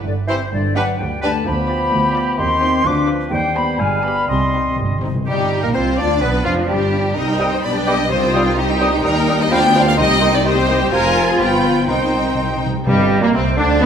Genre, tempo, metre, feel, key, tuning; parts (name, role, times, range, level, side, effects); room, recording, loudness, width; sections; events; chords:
quick classical-period movement for symphony orchestra; 127 BPM; 2/4; rubato; C minor; A4 = 441 Hz
mellow French horn section; sustained chords; 0.0-13.8 s; C3 to Ab4; -24 LUFS; left 4 dB
warm chamber cello section; bass; 0.0-13.9 s; D2 to G4; -22 LUFS; right 2 dB
small flute group; second line; 0.1-13.9 s; F4 to Eb6; -23 LUFS; left 2 dB
rich chamber double bass section; bass; 0.1-13.9 s; F1 to Eb2; -22 LUFS; right 2 dB
clear studio violin section; melody; 0.3-13.9 s; G3 to B5; -26 LUFS; left 4 dB
clear oboe; second line; 0.3-13.9 s; Bb3 to Ab5; -27 LUFS; right 2 dB
rich chamber violin section; second line; 0.3-13.9 s; G3 to G5; -22 LUFS; left 2 dB
rich chamber viola section; accompaniment; 0.3-13.9 s; F3 to C5; -24 LUFS; right 1 dB
warm bassoon; accompaniment; 0.3-13.9 s; G2 to D4; -25 LUFS; right 1 dB
timpani; percussion; 4.3-5.7, 8.1-8.8, 11.9-13.3 s; C3; -24 LUFS; left 1 dB
warm trumpet section; stabs; 12.9-13.9 s; G3 to D4; -22 LUFS; equal
wet scoring stage reverb, RT60 2.0 s; -14 LUFS; side -7 dB against mid
0.0-5.3 A section; 5.3-12.9 B section
timpani fill 4.3-5.3, 11.9-12.9
0.1 C/G; 0.5 G; 1.5 G7/D; 2.4 Cm/Eb; 2.9 Bdim/D; 3.3 Cm/Eb; 3.8 G7; 4.3 Cm; 5.3 Eb/G; 5.8 Csus24; 6.2 G; 7.2 Cm; 7.6 G/B; 8.1 Cm; 9.0 Eb; 9.5 G7/D; 10.0 Cm; 10.9 Fm; 11.4 G7; 11.9 Cm; 12.9 Eb/G; 13.3 Csus2